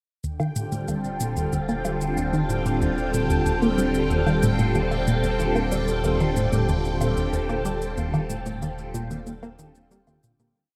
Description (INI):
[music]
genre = ambient, sequencer-driven space music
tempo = 93 BPM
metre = 4/4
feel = straight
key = Eb lydian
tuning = A4 = 440 Hz
[part]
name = phased string machine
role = sustained chords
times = 0.2-10.6 s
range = D3 to A4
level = -28 LUFS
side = equal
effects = ensemble chorus, phaser
[part]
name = tight sequenced synth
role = riff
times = 0.2-10.5 s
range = Eb2 to Bb3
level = -28 LUFS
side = equal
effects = chorus, phaser, tape echo
[part]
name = round analog bass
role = bass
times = 0.2-10.5 s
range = Eb1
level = -33 LUFS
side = equal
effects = none
[part]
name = shaker and woodblock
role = percussion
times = 0.2-10.5 s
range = none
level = -40 LUFS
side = equal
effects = tape echo
[part]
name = bubbling stepped-filter texture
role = texture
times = 0.2-10.6 s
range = G5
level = -37 LUFS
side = equal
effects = chorus, built-in reverb
[sound]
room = moderate spring reverb, RT60 2.3 s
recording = echo-heavy mix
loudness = -24 LUFS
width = mono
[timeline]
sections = 0.2-10.6 A section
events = filter sweep on synth arpeggio sound 0.2-10.6; fade-out 7.1-10.6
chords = 0.2 Eb